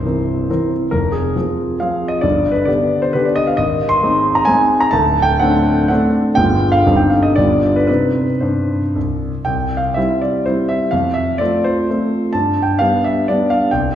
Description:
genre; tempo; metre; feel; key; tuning
classical, romantic triple-time dance for piano with dotted rhythms; 105-146 BPM; 3/4; rubato; C minor, C major from 9.5 s; A4 = 439 Hz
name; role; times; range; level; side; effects
warm concert grand piano; solo; 0.0-13.9 s; C1 to C6; -14 LUFS; equal; none
room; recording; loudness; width
wet recital hall reverb, RT60 1.8 s; heard from further back in the room, lossy compression artefacts; -14 LUFS; side -10 dB against mid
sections
0.0-9.5 A section; 9.5-13.9 B section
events
none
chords
0.0 C7; 0.9 Fm; 2.2 G; 3.6 Ab; 4.9 D7; 6.4 G7b9; 6.8 Cm/G; 7.4 G7; 7.9 Cm; 9.5 C; 10.9 F; 12.3 G

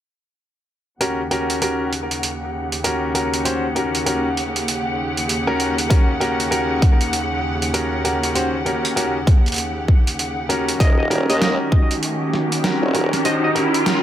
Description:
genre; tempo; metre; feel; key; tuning
glitch hop; 98 BPM; 4/4; swing 61% on 16ths; unclear; A4 = 440 Hz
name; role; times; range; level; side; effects
muted studio string section; sustained chords; 1.0-14.0 s; Eb2 to F#5; -23 LUFS; equal; vintage 12-bit sampler grit, sidechain pumping, low-pass filter
clear baby grand piano; stabs; 1.0-14.0 s; Db4 to C5; -22 LUFS; left 1 dB; sidechain pumping, low-pass filter, digital delay
boom bap sampler-style drum kit; drums; 1.0-14.0 s; hi-hat, snare drum; -24 LUFS; right 2 dB; overdrive, studio reverb
electronic kick drum; drums; 5.9-11.9 s; none; -14 LUFS; equal; studio reverb
sync lead; melody; 10.8-13.5 s; Eb5; -25 LUFS; equal; chorus, digital delay
formant-sweep wobble bass; bass; 10.8-13.1 s; Eb1 to Eb2; -20 LUFS; equal; chorus, high-pass filter
riser; sound effects; 11.8-14.0 s; none; -24 LUFS; equal; none
room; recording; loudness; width
light reverb; none; -17 LUFS; side -11 dB against mid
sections
1.0-10.8 A section; 10.8-14.0 B section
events
filter sweep on string section 1.0-10.8, 10.8-14.0; break 10.2-10.8; build-up 10.8-14.0; riser 11.8-14.0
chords
1.0 Eb7#9

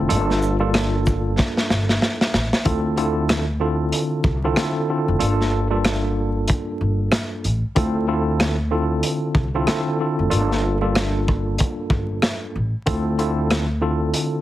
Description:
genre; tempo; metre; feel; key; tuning
hip hop, boom-bap hip-hop; 94 BPM; 4/4; swing 59% on 16ths; D minor; A4 = 443 Hz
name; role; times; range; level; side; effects
tine electric piano; accompaniment; 0.0-14.4 s; G2 to A4; -22 LUFS; equal; overdrive, fast stereo tremolo, cassette tape, high-pass filter, low-pass filter
upright bass; bass; 0.0-14.1 s; F1 to D2; -23 LUFS; equal; none
crunchy breakbeat drum kit; drums; 0.1-14.3 s; hi-hat, kick drum, rim click, shaker, snare drum; -21 LUFS; equal; none
room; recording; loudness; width
light reverb; heavily compressed radio sound, multiband compression, vinyl crackle; -18 LUFS; side -14 dB against mid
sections
0.0-2.7 A section; 2.7-14.4 B section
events
drum fill 1.4-2.7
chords
0.1 Gm7; 2.7 Dm7; 5.2 Gm7; 7.8 Dm7; 10.3 Gm7; 12.9 Dm7

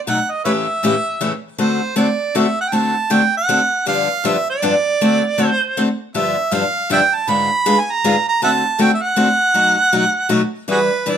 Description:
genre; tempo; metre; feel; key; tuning
jazz; 158 BPM; 3/4; swing 62% on 8ths; D mixolydian; A4 = 440 Hz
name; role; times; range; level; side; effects
warm harmonica; melody; 0.1-11.2 s; F#4 to B5; -16 LUFS; right 3 dB; none
picked steel-string acoustic guitar; accompaniment; 0.1-11.2 s; G2 to B4; -18 LUFS; left 2 dB; none
room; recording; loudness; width
moderate studio reverb, RT60 0.8 s; minimal, uncompressed stereo recording; -14 LUFS; side -8 dB against mid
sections
0.0-1.6 A section; 1.6-11.2 A section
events
none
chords
0.1 B7; 0.4 A7; 1.6 D7; 3.9 G7; 5.0 D7; 6.1 G7; 7.3 G#dim7; 8.4 D7; 9.5 B7

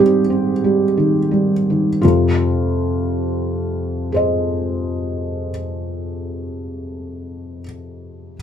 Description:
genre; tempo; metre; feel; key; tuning
neoclassical minimalist piano; 29 BPM (dotted quarters); 6/8; rubato; F minor; A4 = 440 Hz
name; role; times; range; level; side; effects
felt-muted upright piano; solo; 0.0-8.4 s; F2 to Eb5; -17 LUFS; equal; none
room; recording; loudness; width
light reverb; close, detailed microphones; -17 LUFS; side -8 dB against mid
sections
0.0-2.0 A section; 2.0-6.2 B section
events
slowing down 0.0-2.0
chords
0.0 Abmaj7; 2.0 Fm7

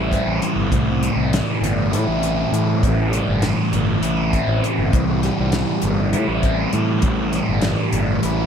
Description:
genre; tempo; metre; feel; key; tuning
psychedelic rock; 200 BPM (eighths); 7/8; straight; A minor; A4 = 438 Hz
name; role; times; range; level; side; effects
thick fuzz guitar; riff; 0.0-8.5 s; A2 to E4; -19 LUFS; equal; distortion, phaser
fuzz fingered electric bass; bass; 0.0-8.5 s; G1 to A2; -22 LUFS; equal; overdrive
damped 70s drum kit; drums; 0.1-8.4 s; hi-hat, kick drum, snare drum; -24 LUFS; left 1 dB; none
room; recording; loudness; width
light reverb, small room reverb; none; -17 LUFS; side -7 dB against mid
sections
0.0-8.5 A section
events
none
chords
0.0 Am7

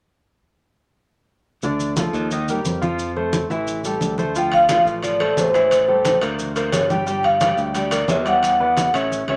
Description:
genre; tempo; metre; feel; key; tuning
Afro-Cuban jazz; 176 BPM; 4/4; straight; D minor; A4 = 435 Hz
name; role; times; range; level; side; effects
bright grand piano; accompaniment; 1.6-9.4 s; D3 to G5; -26 LUFS; equal; none
modern bright fingered electric bass; bass; 1.6-9.4 s; G1 to F2; -30 LUFS; equal; none
congas; percussion; 1.6-9.4 s; none; -29 LUFS; equal; none
maracas; percussion; 1.6-9.3 s; none; -36 LUFS; equal; none
vibraphone with medium mallets; melody; 4.4-8.9 s; C5 to G5; -19 LUFS; equal; none
timbales; percussion; 4.5-9.4 s; none; -29 LUFS; equal; none
room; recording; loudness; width
wet studio reverb, RT60 0.5 s; none; -20 LUFS; mono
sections
1.6-4.3 A section; 4.3-9.4 B section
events
none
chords
1.6 Dm; 2.3 Ebadd9; 3.0 Fmaj7; 3.7 A5; 4.3 Dm9; 5.7 Am7; 6.4 Gmadd11; 7.1 Gm7; 8.4 Em11

